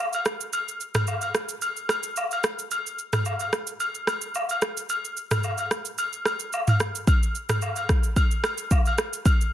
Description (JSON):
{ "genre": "afrobeats", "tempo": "110 BPM", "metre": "4/4", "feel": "swing 55% on 16ths", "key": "none", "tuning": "none", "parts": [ { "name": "afro-pop drum kit", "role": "drums", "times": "0.1-9.5 s", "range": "kick drum, rim click, shaker, toms", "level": "-24 LUFS", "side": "equal", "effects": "soft clipping on snare" }, { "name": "agogo bells and woodblock", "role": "percussion", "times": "0.1-9.4 s", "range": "none", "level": "-28 LUFS", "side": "left 2 dB", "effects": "none" } ], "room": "little or no reverb", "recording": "dense, heavily limited modern master", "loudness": "-23 LUFS", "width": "side -12 dB against mid", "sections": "0.0-9.5 A section", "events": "break 0.0-7.1", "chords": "none", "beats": "| 0.53 1.07 1.62 2.17 | 2.71 3.26 3.80 4.35 | 4.89 5.44 5.98 6.53 | 7.07 7.62 8.16 8.71 | 9.26" }